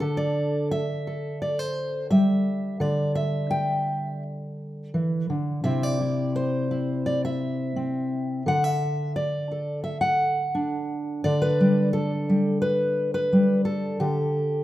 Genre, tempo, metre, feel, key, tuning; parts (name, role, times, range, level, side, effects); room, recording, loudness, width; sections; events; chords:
folk, solo fingerstyle acoustic guitar; 86 BPM; 4/4; rubato; G major; A4 = 440 Hz
fingerpicked steel-string acoustic guitar; solo; 0.0-14.6 s; C3 to G5; -22 LUFS; equal
light reverb; minimal, uncompressed stereo recording; -22 LUFS; side -14 dB against mid
0.0-14.6 A section
0.0 Gsus2/D; 5.6 Cadd9; 8.5 D; 11.2 Gsus2/D